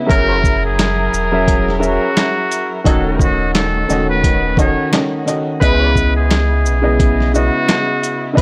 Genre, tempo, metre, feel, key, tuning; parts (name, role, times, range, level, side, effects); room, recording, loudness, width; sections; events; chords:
hip hop, boom-bap hip-hop; 87 BPM; 4/4; swing 58% on 16ths; C# minor; A4 = 437 Hz
dark upright piano; accompaniment; 0.0-8.4 s; C#3 to E5; -21 LUFS; equal; cassette tape, high-pass filter, low-pass filter
warm studio string section; sustained chords; 0.0-8.4 s; C#3 to A#4; -28 LUFS; equal; high-pass filter, low-pass filter
trumpet with metal mute; melody; 0.1-8.3 s; F#4 to C#5; -21 LUFS; equal; high-pass filter, low-pass filter
warm horn section; stabs; 0.1-8.4 s; F#3 to B4; -29 LUFS; equal; high-pass filter, low-pass filter, analog delay
warm sub bass; bass; 0.1-8.4 s; D#1 to C#2; -21 LUFS; equal; transformer saturation
boom bap sampler-style drum kit; drums; 0.1-8.4 s; handclaps, hi-hat, kick drum, shaker, snare drum; -18 LUFS; equal; vintage 12-bit sampler grit
finger snap; percussion; 0.8-7.9 s; -30 LUFS; equal
little or no reverb; dry, gritty hardware recording; -15 LUFS; mono
0.0-8.4 A section
0.1 F#7; 2.9 D#m7b5; 5.6 C#m7